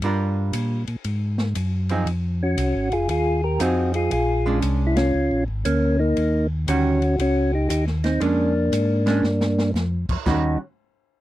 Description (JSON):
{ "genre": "soul jazz organ trio", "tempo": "117 BPM", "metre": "4/4", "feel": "swing 66% on 8ths", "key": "Eb mixolydian", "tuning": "A4 = 440 Hz", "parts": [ { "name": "archtop guitar, miked and amplified", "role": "accompaniment", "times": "0.0-10.6 s", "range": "Eb3 to Bb4", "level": "-25 LUFS", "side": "right 4 dB", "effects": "none" }, { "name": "mellow tonewheel organ", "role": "bass", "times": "0.0-10.6 s", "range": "F1 to Bb2", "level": "-23 LUFS", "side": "equal", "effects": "slow rotary speaker" }, { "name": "open jazz drum kit", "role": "drums", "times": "0.0-10.4 s", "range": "crash cymbal, hi-hat, kick drum, ride cymbal, snare drum", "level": "-30 LUFS", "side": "equal", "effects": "none" }, { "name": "percussive tonewheel organ", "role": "melody", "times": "2.4-10.6 s", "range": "Bb3 to Bb4", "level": "-21 LUFS", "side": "equal", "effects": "slow rotary speaker" } ], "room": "little or no reverb", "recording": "dry, close 1970s-style studio recording", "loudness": "-19 LUFS", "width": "side -15 dB against mid", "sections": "0.0-10.3 A section", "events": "band accent 4.9; drum fill 9.2-9.7", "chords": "0.0 Gm7; 1.0 Ab7; 2.1 Fm7; 4.1 Bb7#9; 6.2 Eb7#9; 8.2 Bb7#9; 10.3 Eb7#9" }